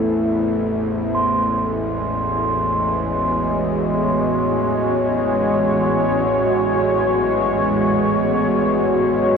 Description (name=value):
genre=dark ambient drone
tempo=free time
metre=none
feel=none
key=unclear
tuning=A4 = 440 Hz
part: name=deep dark ambient pad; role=sustained chords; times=0.0-9.4 s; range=G#3 to C#5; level=-18 LUFS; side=equal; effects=chorus, built-in reverb
part: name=bowed-like drone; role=drone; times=0.0-9.4 s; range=A1 to E2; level=-24 LUFS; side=left 1 dB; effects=built-in reverb
part: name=quartz singing bowl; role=texture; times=1.1-9.4 s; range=C6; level=-25 LUFS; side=right 2 dB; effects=none
room=wet huge ambient reverb, RT60 8.8 s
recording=worn, warbling old tape, cassette tape, warbly pitch drift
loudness=-17 LUFS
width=side -6 dB against mid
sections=0.0-9.4 A section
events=none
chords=0.0 Am; 1.1 F#sus2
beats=free time